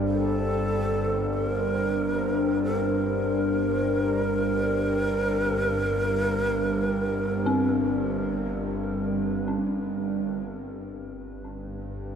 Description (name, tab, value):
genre	dark ambient drone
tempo	free time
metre	none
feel	none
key	G minor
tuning	A4 = 441 Hz
part	deep dark ambient pad	sustained chords	0.0-12.2 s	G3 to C5	-28 LUFS	equal	chorus, built-in reverb
part	dark detuned synth bell	arpeggios	0.0-12.2 s	C4 to G4	-32 LUFS	left 3 dB	chorus, analog delay
part	bowed-like drone	drone	0.0-12.2 s	G1 to G2	-30 LUFS	equal	built-in reverb
part	breathy long shakuhachi	melody	0.1-9.1 s	A4 to Bb4	-29 LUFS	right 2 dB	analog delay
room	wet plate reverb, RT60 2.8 s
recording	dreamy mix soaked in reverb, cassette tape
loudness	-23 LUFS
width	side -7 dB against mid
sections	0.0-10.5 A section; 10.5-12.2 B section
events	filter sweep on synth drone 10.5-12.2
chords	0.0 Gm; 10.5 G5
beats	free time